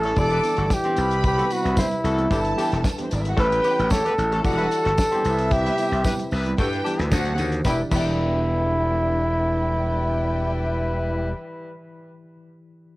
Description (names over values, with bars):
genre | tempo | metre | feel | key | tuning
disco | 112 BPM | 4/4 | straight | E minor | A4 = 439 Hz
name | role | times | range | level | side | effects
breathy flugelhorn | melody | 0.0-11.3 s | E4 to B4 | -23 LUFS | equal | cassette tape
mellow electric guitar | accompaniment | 0.0-11.5 s | E3 to G4 | -34 LUFS | right 4 dB | cassette tape
mellow tine electric piano | accompaniment | 0.0-13.0 s | C3 to D5 | -33 LUFS | left 2 dB | medium stereo tremolo, cassette tape
dark French horn section | sustained chords | 0.0-11.1 s | C3 to B4 | -35 LUFS | equal | none
gritty slap bass | bass | 0.0-11.3 s | E1 to G2 | -25 LUFS | equal | overdrive
damped 70s drum kit | drums | 0.0-8.1 s | crash cymbal, hi-hat, kick drum, snare drum | -25 LUFS | equal | cassette tape
clear horn section | stabs | 0.1-11.3 s | E3 to D5 | -31 LUFS | left 2 dB | cassette tape, analog delay
warm studio violin section | second line | 0.2-11.3 s | C4 to D6 | -30 LUFS | equal | cassette tape
tambourine | percussion | 0.2-8.1 s | none | -41 LUFS | right 3 dB | none
room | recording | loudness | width
light reverb | home recording on cassette | -20 LUFS | side -20 dB against mid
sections
0.0-7.7 A section; 7.7-11.9 B section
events
none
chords
0.2 Em7; 1.0 Cmaj7; 2.3 G6; 3.4 A7; 4.4 Em7; 5.2 Cmaj7; 6.6 G6; 7.1 D7; 7.7 Em7